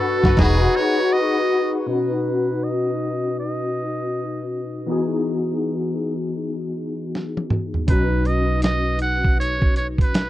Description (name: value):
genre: R&B, neo-soul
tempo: 80 BPM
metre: 4/4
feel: swing 63% on 16ths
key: B major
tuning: A4 = 440 Hz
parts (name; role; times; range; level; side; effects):
- trumpet with metal mute; melody; 0.0-10.3 s; G#4 to F#5; -26 LUFS; right 2 dB; low-pass filter
- barky tine electric piano; accompaniment; 0.0-10.3 s; B2 to B4; -22 LUFS; left 2 dB; ensemble chorus, low-pass filter
- upright bass; bass; 0.2-0.7, 7.9-10.3 s; E1 to B1; -22 LUFS; right 1 dB; none
- dusty soul sampler-style drum kit; drums; 0.2-0.6, 7.2-10.3 s; crash cymbal, hi-hat, kick drum, snare drum, toms; -19 LUFS; right 1 dB; none
room: little or no reverb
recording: dry, close 1970s-style studio recording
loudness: -19 LUFS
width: side -14 dB against mid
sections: 0.0-1.9 A section; 1.9-10.3 B section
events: band accent 0.0-1.9; filter sweep 1.9-10.3; drum fill 7.1-7.9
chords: 0.4 Emaj9; 1.9 Badd9; 4.9 Emaj9; 7.9 Badd9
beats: 0.37 1.12 | 1.87 2.62 3.37 4.12 | 4.87 5.62 6.37 7.12 | 7.87 8.62 9.37 10.12